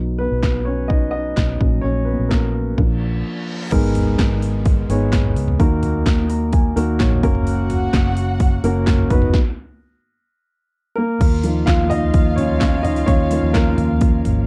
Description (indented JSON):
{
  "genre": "piano-driven pop",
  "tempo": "128 BPM",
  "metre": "4/4",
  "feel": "straight",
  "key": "unclear",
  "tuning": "A4 = 436 Hz",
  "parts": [
    { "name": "dark baby grand piano", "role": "accompaniment", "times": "0.0-14.5 s", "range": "Ab2 to Bb5", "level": "-23 LUFS", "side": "equal", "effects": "none" },
    { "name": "vintage muted fingered electric bass", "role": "bass", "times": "0.0-14.5 s", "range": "Gb1 to Eb2", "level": "-23 LUFS", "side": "equal", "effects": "none" },
    { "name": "deep house drum kit", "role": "drums", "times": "0.4-14.4 s", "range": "crash cymbal, handclaps, hi-hat, kick drum, snare drum, toms", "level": "-20 LUFS", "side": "equal", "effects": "overdrive" },
    { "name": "reverse cymbal and downlifter", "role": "sound effects", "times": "2.9-7.5 s", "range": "none", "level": "-39 LUFS", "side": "equal", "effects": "none" },
    { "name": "dark studio violin section", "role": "second line", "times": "7.5-14.4 s", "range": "F4 to Gb5", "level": "-31 LUFS", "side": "equal", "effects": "none" }
  ],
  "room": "little or no reverb",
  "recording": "dark, warm production",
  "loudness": "-18 LUFS",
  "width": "mono",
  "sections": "0.0-3.7 A section; 3.7-11.2 B section; 11.2-14.5 C section",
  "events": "grand piano solo 0.0-3.7, 11.2-14.5; reverse cymbal 2.9-3.7; break 3.3-3.7; grand piano fill 6.1-7.5; stop 9.3-11.2",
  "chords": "0.0 B; 1.6 Gb/Bb; 2.8 Bb; 3.7 Abmadd9; 5.6 Ebm; 7.2 Gb; 9.1 B/F#; 11.2 Db6/Eb"
}